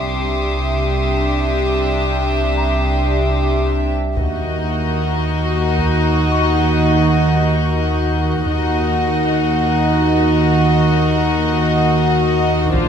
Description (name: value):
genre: cinematic, suspense film score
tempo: 56 BPM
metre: 4/4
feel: straight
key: unclear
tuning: A4 = 441 Hz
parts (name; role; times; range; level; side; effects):
- warm studio violin section; melody; 0.0-12.9 s; C5 to E5; -25 LUFS; left 2 dB; none
- warm studio violin section; second line; 0.0-12.9 s; F4 to G4; -21 LUFS; left 3 dB; none
- warm symphonic viola section; accompaniment; 0.0-12.9 s; D4 to Eb4; -23 LUFS; equal; none
- glass harmonica; sustained chords; 0.0-12.9 s; D4 to E5; -26 LUFS; equal; none
- dark chamber double bass section; bass; 0.0-12.9 s; Bb1 to Eb2; -24 LUFS; right 3 dB; none
- warm chamber cello section; bass; 0.0-12.9 s; Bb2 to Eb3; -21 LUFS; right 4 dB; none
- punchy sub bass; drone; 0.0-12.9 s; Bb1 to Eb2; -22 LUFS; left 1 dB; none
- small celesta; texture; 0.0-12.8 s; Bb5 to C#6; -29 LUFS; left 5 dB; none
- warm studio violin section; texture; 0.0-12.9 s; C6 to G6; -30 LUFS; left 3 dB; none
- taiko ensemble; drums; 4.2-6.3, 12.7-12.9 s; none; -24 LUFS; equal; none
room: moderate concert hall reverb, RT60 2.0 s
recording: minimal, uncompressed stereo recording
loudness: -14 LUFS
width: side -8 dB against mid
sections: 0.0-12.9 A section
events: none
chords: 0.0 Cadd9; 4.2 Ebm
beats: 0.96 2.03 3.10 | 4.17 5.24 6.32 7.39 | 8.46 9.53 10.60 11.67 | 12.74